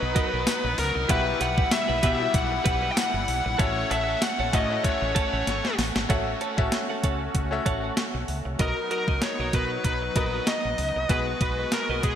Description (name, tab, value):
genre	1980s-style pop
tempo	96 BPM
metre	4/4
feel	swing 55% on 16ths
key	unclear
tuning	A4 = 440 Hz
part	high-gain lead guitar	melody	0.0-12.2 s	G#4 to G5	-28 LUFS	left 2 dB	distortion, shimmer reverb, ping-pong delay
part	bright grand piano	accompaniment	0.0-12.2 s	B3 to A#5	-33 LUFS	left 4 dB	shimmer reverb
part	heavy high-gain guitar	accompaniment	0.0-6.6 s	E2 to B3	-36 LUFS	equal	distortion, lush chorus, shimmer reverb
part	brassy analog pad	sustained chords	0.0-12.2 s	F#3 to F#5	-33 LUFS	left 1 dB	chorus, shimmer reverb
part	twelve-string electric guitar	riff	0.0-12.2 s	F#4 to F#5	-33 LUFS	right 5 dB	analog chorus, shimmer reverb
part	woody fretless electric bass	bass	0.0-12.2 s	G1 to B2	-31 LUFS	equal	none
part	clean 12-bit digital drum machine	drums	0.2-12.2 s	hi-hat, kick drum, snare drum, tambourine	-26 LUFS	equal	overdrive, gated reverb
room	moderate lush hall reverb, RT60 2.0 s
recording	bright 1980s-style digital production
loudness	-23 LUFS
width	side -9 dB against mid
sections	0.0-6.1 A section; 6.1-8.6 B section; 8.6-12.2 C section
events	drum fill 5.5-6.1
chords	0.0 Bmaj7; 1.1 Emadd9/B; 3.6 A6; 8.6 Bmaj7; 11.1 G#m7/B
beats	0.47 | 1.10 1.72 2.35 2.97 | 3.60 4.22 4.85 5.47 | 6.10 6.72 7.35 7.97 | 8.60 9.22 9.85 10.47 | 11.10 11.72